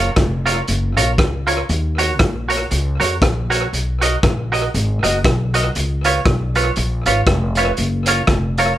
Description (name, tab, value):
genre	ska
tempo	118 BPM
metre	4/4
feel	swing 57% on 8ths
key	F# major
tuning	A4 = 439 Hz
part	semi-hollow electric guitar	accompaniment	0.0-8.7 s	E#4 to D#5	-18 LUFS	right 2 dB	wide subtle chorus
part	upright bass	bass	0.0-8.7 s	E#1 to E#2	-20 LUFS	equal	none
part	raw garage drum kit	drums	0.2-8.7 s	hi-hat, kick drum, rim click	-19 LUFS	equal	tape echo
room	light reverb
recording	none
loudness	-15 LUFS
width	side -13 dB against mid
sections	0.0-8.8 A section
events	none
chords	0.0 F#maj7; 1.7 D#m7; 3.7 Bmaj7; 5.8 C#7; 7.8 F#maj7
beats	0.17 0.68 1.19 | 1.69 2.20 2.71 3.21 | 3.72 4.23 4.74 5.24 | 5.75 6.26 6.76 7.27 | 7.78 8.28